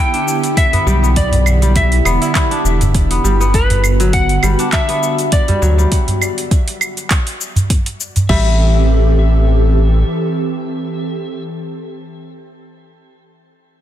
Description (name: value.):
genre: organic downtempo.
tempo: 101 BPM.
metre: 4/4.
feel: swing 55% on 16ths.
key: A dorian.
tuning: A4 = 440 Hz.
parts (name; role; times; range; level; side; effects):
clean lap steel guitar; melody; 0.0-11.4 s; B4 to G5; -21 LUFS; left 1 dB; ping-pong delay, shimmer reverb.
airy breathy pad; sustained chords; 0.0-11.4 s; D3 to A4; -21 LUFS; right 2 dB; chorus, sidechain pumping, shimmer reverb.
kora; arpeggios; 0.0-10.4 s; F#3 to E4; -22 LUFS; left 2 dB; digital delay, shimmer reverb.
afro-pop drum kit; drums; 0.1-8.4 s; cabasa, claves, crash cymbal, handclaps, hi-hat; -21 LUFS; right 1 dB; none.
electronic kick drum; drums; 0.6-8.4 s; none; -15 LUFS; equal; none.
udu; percussion; 0.7-8.3 s; none; -18 LUFS; right 1 dB; none.
round analog bass; bass; 0.9-10.0 s; E1 to D2; -13 LUFS; equal; none.
room: light reverb, digital ambience.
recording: dense, heavily limited modern master.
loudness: -12 LUFS.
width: side -11 dB against mid.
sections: 0.0-8.3 A section; 8.3-10.7 B section.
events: none.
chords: 0.0 Em7; 3.5 Gmaj7; 8.3 Am7.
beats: 0.57 | 1.16 1.76 2.35 2.95 | 3.54 4.13 4.73 5.32 | 5.92 6.51 7.10 7.70 | 8.29 8.89 9.48 10.07.